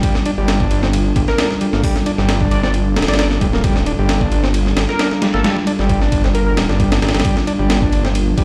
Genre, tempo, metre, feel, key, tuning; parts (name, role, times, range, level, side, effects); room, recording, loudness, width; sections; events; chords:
breakbeat, breaks; 133 BPM; 4/4; swing 54% on 16ths; A4 = 440 Hz
dark analog pad; sustained chords; 0.0-8.4 s; G3 to Bb4; -24 LUFS; equal; chorus, sidechain pumping
combo organ; riff; 0.0-8.4 s; G3 to D4; -24 LUFS; equal; delay
breakbeat sampler-style drum kit; drums; 0.0-8.4 s; hi-hat, kick drum, ride cymbal, snare drum; -20 LUFS; equal
detuned saw bass; bass; 0.4-8.4 s; D1 to G1; -20 LUFS; equal
plucky unison lead; melody; 1.3-6.5 s; A4 to D5; -26 LUFS; equal; telephone sound, delay
congas; percussion; 7.8-8.4 s; -29 LUFS; equal
moderate studio reverb, RT60 0.6 s; played on a big sound system in a bare room, large studio reverb; -16 LUFS; mono
0.0-8.4 A section
0.0 Gm7